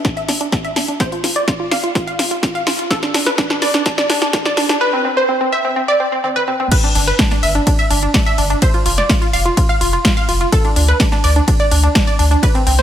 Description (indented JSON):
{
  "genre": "progressive house",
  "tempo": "126 BPM",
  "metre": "4/4",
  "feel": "straight",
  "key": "unclear",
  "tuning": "A4 = 439 Hz",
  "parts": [
    { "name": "wide unison pluck", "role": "arpeggios", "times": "0.0-12.8 s", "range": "C4 to F5", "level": "-17 LUFS", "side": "right 1 dB", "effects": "sidechain pumping, digital delay" },
    { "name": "electronic kick drum", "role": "drums", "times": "0.0-12.5 s", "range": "none", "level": "-17 LUFS", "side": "equal", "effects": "none" },
    { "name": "house drum kit", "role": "drums", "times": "0.0-12.8 s", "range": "crash cymbal, hi-hat, ride cymbal, snare drum, toms", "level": "-19 LUFS", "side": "equal", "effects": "sidechain pumping on hats, sidechain pumping on toms, sidechain pumping on cymbals" },
    { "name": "round analog bass", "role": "bass", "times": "7.0-12.8 s", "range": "F1 to D2", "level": "-16 LUFS", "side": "equal", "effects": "sidechain pumping" }
  ],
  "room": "moderate lush hall reverb, RT60 2.0 s",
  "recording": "high-pass filter",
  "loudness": "-13 LUFS",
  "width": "side -10 dB against mid",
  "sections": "0.0-6.7 A section; 6.7-12.8 B section",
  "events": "build-up 0.0-6.7; drum fill 0.0-4.8, 6.2-6.7; filter sweep on synth pluck 0.0-6.7; filter sweep 0.0-6.7; drop 6.7-12.8",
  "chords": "0.0 N.C.; 6.7 G5; 8.6 N.C.",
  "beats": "0.05 0.53 | 1.00 1.48 1.95 2.43 | 2.91 3.38 3.86 4.33 | 4.81 5.29 5.76 6.24 | 6.71 7.19 7.67 8.14 | 8.62 9.10 9.57 10.05 | 10.53 11.00 11.48 11.95 | 12.43"
}